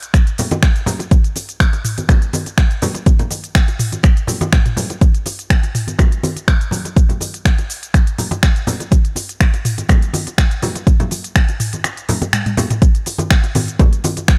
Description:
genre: house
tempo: 123 BPM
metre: 4/4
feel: swing 54% on 16ths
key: none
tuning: none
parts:
  - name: afro-pop drum kit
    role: drums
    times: 0.0-14.4 s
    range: cabasa, finger snaps, hi-hat, toms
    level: -23 LUFS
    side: equal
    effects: none
  - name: electronic kick drum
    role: drums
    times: 0.1-14.4 s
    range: none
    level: -14 LUFS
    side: equal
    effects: none
  - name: congas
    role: percussion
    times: 0.1-14.3 s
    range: none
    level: -24 LUFS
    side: equal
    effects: none
room: little or no reverb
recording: dry, gritty hardware recording, faint mains hum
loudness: -16 LUFS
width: mono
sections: 0.0-12.8 A section; 12.8-14.4 B section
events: break 11.8-12.8; drum fill 12.3-12.8; drop 12.8-14.4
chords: none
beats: 0.14 0.62 | 1.11 1.60 2.09 2.58 | 3.06 3.55 4.04 4.53 | 5.01 5.50 5.99 6.48 | 6.97 7.45 7.94 8.43 | 8.92 9.40 9.89 10.38 | 10.87 11.36 11.84 12.33 | 12.82 13.31 13.79 14.28

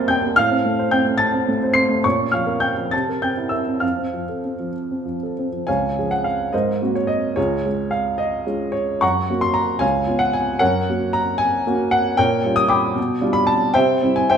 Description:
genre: classical, romantic character piece for solo piano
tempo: 63-79 BPM (dotted quarters)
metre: 6/8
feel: rubato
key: F major, Db major from 5.7 s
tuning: A4 = 439 Hz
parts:
  - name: warm upright piano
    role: solo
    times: 0.0-14.4 s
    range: Db2 to C7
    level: -17 LUFS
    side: equal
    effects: none
room: moderate recital hall reverb, RT60 1.4 s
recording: minimal, uncompressed stereo recording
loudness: -17 LUFS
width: side -7 dB against mid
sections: 0.0-5.7 A section; 5.7-14.4 B section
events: none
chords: 0.4 F/A; 2.0 Bbm; 2.9 C7; 3.8 F; 5.7 Db; 6.5 Ab9; 7.4 Db; 9.0 Gb; 9.8 Db7; 10.6 Gb; 12.2 Gm7b5/Bb; 13.0 G7/B; 13.8 C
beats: | 0.35 1.20 | 2.04 2.92 | 3.82 4.75 | 5.67 6.53 | 7.37 8.21 | 9.02 9.82 | 10.61 11.41 | 12.18 12.97 | 13.75

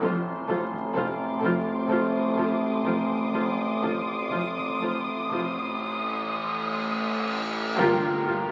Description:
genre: cinematic, suspense film score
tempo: 62 BPM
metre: 4/4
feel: straight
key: unclear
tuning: A4 = 440 Hz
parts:
  - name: muted symphonic violin section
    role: melody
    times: 0.0-8.5 s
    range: Bb4 to C5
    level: -37 LUFS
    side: equal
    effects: none
  - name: muted symphonic violin section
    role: second line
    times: 0.0-8.5 s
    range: G4 to A4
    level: -37 LUFS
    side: equal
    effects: none
  - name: muted symphonic viola section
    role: accompaniment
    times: 0.0-8.5 s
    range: F4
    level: -34 LUFS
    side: equal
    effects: none
  - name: warm French horn section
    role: sustained chords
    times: 0.0-8.2 s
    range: A3 to F4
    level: -32 LUFS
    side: equal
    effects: none
  - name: muted chamber cello section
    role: riff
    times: 0.0-8.5 s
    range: F2 to F3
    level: -41 LUFS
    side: equal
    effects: none
  - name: muted symphonic cello section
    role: bass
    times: 0.0-8.3 s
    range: F2 to G2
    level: -40 LUFS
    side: equal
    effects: none
  - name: muted symphonic double bass section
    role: bass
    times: 0.0-8.3 s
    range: F1 to G1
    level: -41 LUFS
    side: equal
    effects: none
  - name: overtone-sweeping drone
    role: drone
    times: 0.0-8.5 s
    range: G1 to A1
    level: -34 LUFS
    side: equal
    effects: chorus, built-in reverb
  - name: taiko ensemble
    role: drums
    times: 0.0-8.5 s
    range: none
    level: -46 LUFS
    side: equal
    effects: none
  - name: muted symphonic violin section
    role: texture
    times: 0.0-8.5 s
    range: Bb5 to F6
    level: -36 LUFS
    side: equal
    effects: none
  - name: cymbal swell and impact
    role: sound effects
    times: 5.2-8.5 s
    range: none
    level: -37 LUFS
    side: equal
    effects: none
  - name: timpani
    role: percussion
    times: 7.8-8.5 s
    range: G2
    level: -42 LUFS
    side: equal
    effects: none
room: wet concert hall reverb, RT60 2.5 s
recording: very old 78 rpm record, vinyl crackle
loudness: -27 LUFS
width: mono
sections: 0.0-7.8 A section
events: cymbal swell 5.2-7.8; band accent 7.8-8.5; impact 7.8-8.5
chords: 0.0 F; 7.8 Gm7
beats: | 0.03 0.96 1.90 2.86 | 3.84 4.83 5.81 6.80 | 7.78

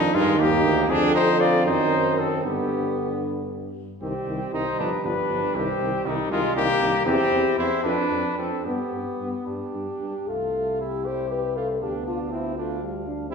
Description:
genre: classical, brass quintet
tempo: 73-81 BPM (dotted quarters)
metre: 6/8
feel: rubato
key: C minor, C major from 7.1 s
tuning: A4 = 441 Hz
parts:
  - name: dark trumpet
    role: melody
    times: 0.0-13.3 s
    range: Eb4 to F5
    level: -26 LUFS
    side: left 6 dB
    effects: none
  - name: mellow French horn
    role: accompaniment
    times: 0.0-13.3 s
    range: D3 to C5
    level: -29 LUFS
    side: left 2 dB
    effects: none
  - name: warm euphonium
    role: accompaniment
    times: 0.0-13.3 s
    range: G3 to E4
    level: -30 LUFS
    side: right 3 dB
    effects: none
  - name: warm bass trombone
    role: bass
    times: 0.0-13.3 s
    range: G1 to G2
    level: -29 LUFS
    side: right 2 dB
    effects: none
  - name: mellow trumpet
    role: second line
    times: 0.1-13.3 s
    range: G3 to G4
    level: -28 LUFS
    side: right 4 dB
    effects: none
room: wet scoring stage reverb, RT60 1.6 s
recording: recorded in a church or concert hall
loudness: -21 LUFS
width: side -5 dB against mid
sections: 0.0-10.3 A section; 10.3-13.3 B section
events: none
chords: 0.0 Cm (rootless); 0.9 Fm6; 1.7 F#dim7; 2.4 G; 4.0 Cm; 4.8 G7; 5.6 Cm; 7.1 C/E; 7.8 Dm7/F; 8.7 G; 10.3 C; 11.8 Dm69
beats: 0.14 | 0.89 1.66 | 2.44 3.23 | 4.01 4.79 | 5.55 6.31 | 7.06 7.85 | 8.65 9.47 | 10.29 11.05 | 11.82 12.57 | 13.32

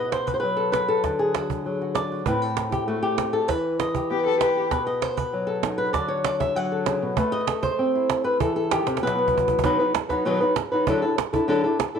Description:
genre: flamenco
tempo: 196 BPM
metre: 4/4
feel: straight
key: unclear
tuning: A4 = 440 Hz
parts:
  - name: flamenco guitar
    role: melody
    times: 0.0-12.0 s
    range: A2 to F#5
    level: -22 LUFS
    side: left 1 dB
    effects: slapback echo
  - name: cajon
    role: percussion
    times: 0.1-12.0 s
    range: none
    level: -27 LUFS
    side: right 8 dB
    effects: none
  - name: dark cello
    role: second line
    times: 4.1-4.6 s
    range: G4 to A4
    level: -28 LUFS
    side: left 12 dB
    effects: slapback echo
room: light reverb, studio reverb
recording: 1960s-style stereo with parts hard left and right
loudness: -21 LUFS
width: side -7 dB against mid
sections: 0.0-9.6 A section; 9.6-12.0 B section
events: drum fill 8.9-9.6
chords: 0.0 B5; 1.0 D; 2.3 Am; 3.5 Em; 4.7 B; 5.9 D; 7.2 Am; 8.4 Em; 9.0 Bsus4; 9.6 B; 10.9 Dadd9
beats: 0.12 0.43 0.74 | 1.04 1.35 1.66 1.96 | 2.27 2.58 2.88 3.19 | 3.49 3.80 4.11 4.41 | 4.72 5.03 5.33 5.64 | 5.94 6.25 6.56 6.87 | 7.17 7.48 7.79 8.10 | 8.40 8.71 9.02 9.33 | 9.64 9.95 10.26 10.56 | 10.87 11.18 11.49 11.80

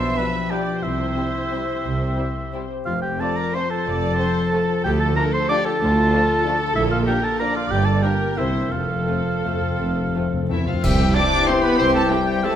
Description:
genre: classical, orchestral ballroom waltz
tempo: 160-203 BPM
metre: 3/4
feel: rubato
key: F major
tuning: A4 = 440 Hz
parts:
  - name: bright clarinet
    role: second line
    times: 0.0-12.6 s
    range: E4 to D5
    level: -28 LUFS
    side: left 1 dB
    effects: none
  - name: warm oboe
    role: second line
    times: 0.0-12.6 s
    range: E5 to D6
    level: -26 LUFS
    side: right 2 dB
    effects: none
  - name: muted symphonic viola section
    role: accompaniment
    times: 0.0-12.5 s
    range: C4 to E5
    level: -29 LUFS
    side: right 2 dB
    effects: none
  - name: concert harp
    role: arpeggios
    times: 0.0-12.6 s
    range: G2 to F5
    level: -27 LUFS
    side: left 6 dB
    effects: none
  - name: muted studio cello section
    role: bass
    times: 0.0-12.6 s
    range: D2 to D4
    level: -26 LUFS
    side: right 1 dB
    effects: none
  - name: muted symphonic double bass section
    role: bass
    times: 0.0-12.1 s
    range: F1 to D2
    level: -26 LUFS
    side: right 2 dB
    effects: none
  - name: muted symphonic violin section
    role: melody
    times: 0.2-12.6 s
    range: E4 to D6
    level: -27 LUFS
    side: left 2 dB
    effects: none
  - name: muted symphonic violin section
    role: second line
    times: 0.2-12.6 s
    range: G3 to D5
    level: -30 LUFS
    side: left 2 dB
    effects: none
  - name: dark French horn section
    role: sustained chords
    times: 0.2-12.6 s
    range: E3 to E4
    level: -30 LUFS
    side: left 4 dB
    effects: none
  - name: timpani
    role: percussion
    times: 8.7-11.3 s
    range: F2 to C3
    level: -28 LUFS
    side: left 1 dB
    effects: none
  - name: clear trumpet section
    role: stabs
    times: 10.8-12.6 s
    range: G4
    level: -26 LUFS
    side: equal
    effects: none
  - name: clash cymbals and concert bass drum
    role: percussion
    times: 10.8-11.4 s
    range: none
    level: -28 LUFS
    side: equal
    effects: none
room: moderate recital hall reverb, RT60 1.6 s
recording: none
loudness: -18 LUFS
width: side -10 dB against mid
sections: 0.0-10.8 A section; 10.8-12.6 B section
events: timpani fill 8.7-10.8; band accent 10.8-11.2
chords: 0.0 G7/B; 0.8 C; 2.9 F; 4.8 Dm; 6.8 Bb; 7.7 Gm; 8.4 C7; 8.7 F; 10.8 C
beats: 0.18 0.51 | 0.84 1.17 1.52 | 1.85 2.18 2.53 | 2.87 3.21 3.55 | 3.87 4.19 4.53 | 4.84 5.17 5.50 | 5.81 6.13 6.46 | 6.76 7.08 7.41 | 7.72 8.04 8.38 | 8.72 9.07 9.44 | 9.79 10.14 10.50 | 10.84 11.16 11.49 | 11.80 12.12 12.44

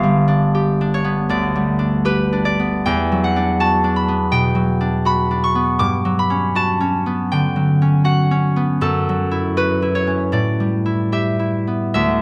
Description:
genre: classical, solo harp piece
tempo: 70-85 BPM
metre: 4/4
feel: rubato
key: unclear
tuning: A4 = 441 Hz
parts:
  - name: concert harp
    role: solo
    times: 0.0-12.2 s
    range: G1 to D6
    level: -18 LUFS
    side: equal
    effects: none
room: light reverb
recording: close, detailed microphones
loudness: -18 LUFS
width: mono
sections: 0.0-12.2 A section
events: none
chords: 0.0 G9; 2.9 Em9; 5.8 Gmaj7#11; 8.8 F#m7; 10.3 A9sus4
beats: 0.55 1.30 2.06 | 2.87 3.62 4.34 5.06 | 5.80 6.56 7.30 8.05 | 8.81 9.55 10.31 11.10 | 11.93

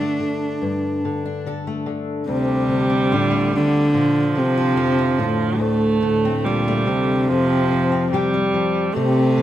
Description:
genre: acoustic folk-pop ballad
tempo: 72 BPM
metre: 4/4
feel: straight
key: D minor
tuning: A4 = 440 Hz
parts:
  - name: warm cello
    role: melody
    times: 0.0-9.4 s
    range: A2 to D4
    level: -20 LUFS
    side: equal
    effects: none
  - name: fingerpicked steel-string acoustic guitar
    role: accompaniment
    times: 0.0-9.4 s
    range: D2 to A4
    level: -24 LUFS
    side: left 4 dB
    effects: none
  - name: warm viola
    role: second line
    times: 2.3-9.4 s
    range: F3 to A3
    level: -22 LUFS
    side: right 4 dB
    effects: none
room: little or no reverb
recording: close, detailed microphones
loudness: -17 LUFS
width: side -12 dB against mid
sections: 0.0-2.3 A section; 2.3-9.4 A section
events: none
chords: 0.0 Gsus2; 2.3 Dm7; 3.9 Bbadd9; 5.6 Dm7; 7.3 Fsus2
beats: 0.60 1.43 | 2.26 3.10 3.93 4.77 | 5.60 6.43 7.27 8.10 | 8.94

